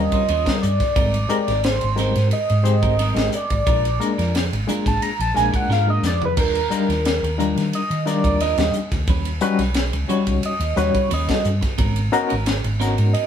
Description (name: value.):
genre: electric jazz fusion.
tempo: 89 BPM.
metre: 4/4.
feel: straight.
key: unclear.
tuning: A4 = 440 Hz.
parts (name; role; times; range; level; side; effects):
overdriven synth lead; melody; 0.0-13.3 s; Bb4 to Bb5; -22 LUFS; right 2 dB; chorus.
barky reed electric piano; accompaniment; 0.0-13.2 s; G3 to Db5; -23 LUFS; left 5 dB; overdrive, fast tremolo.
hollow-body short-scale fingered electric bass; bass; 0.0-13.1 s; Ab1 to Eb3; -22 LUFS; equal; none.
clean electric guitar; stabs; 0.1-13.0 s; G3 to C5; -30 LUFS; right 6 dB; none.
tight funk drum kit; drums; 0.1-13.3 s; crash cymbal, hi-hat, kick drum, ride cymbal, snare drum, toms; -24 LUFS; equal; none.
room: moderate stone room reverb, RT60 1.0 s.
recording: band playing live in one room.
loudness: -17 LUFS.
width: side -8 dB against mid.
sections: 0.0-13.3 A section.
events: analog synth lead solo 0.0-13.3; drum fill 5.7-6.4.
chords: 0.0 Eb13; 1.0 Abmaj9; 3.7 Bb7; 6.4 Ebmaj9; 9.1 Eb7alt; 11.8 Abm11.